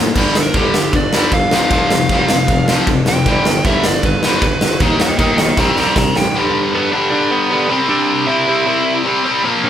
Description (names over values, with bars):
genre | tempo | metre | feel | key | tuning
punk rock | 155 BPM | 4/4 | straight | unclear | A4 = 444 Hz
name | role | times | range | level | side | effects
distorted electric guitar | riff | 0.0-9.7 s | F2 to Eb4 | -15 LUFS | left 1 dB | overdrive
warm tuba | bass | 0.0-6.3 s | F1 to A2 | -22 LUFS | right 1 dB | none
big rock drum kit | drums | 0.2-6.2 s | crash cymbal, kick drum, ride cymbal, snare drum | -17 LUFS | equal | none
dark smooth lead guitar | melody | 0.4-9.7 s | B3 to Bb5 | -19 LUFS | right 1 dB | overdrive
room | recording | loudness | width
moderate large studio reverb, RT60 1.4 s | band playing live in one room | -12 LUFS | side -10 dB against mid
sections
0.0-6.4 A section; 6.4-9.7 B section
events
lead electric guitar solo 0.0-6.4; drum fill 5.6-6.4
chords
0.2 G5; 1.5 F5; 3.3 G; 4.8 Eb5; 5.6 C5; 6.4 G; 7.7 C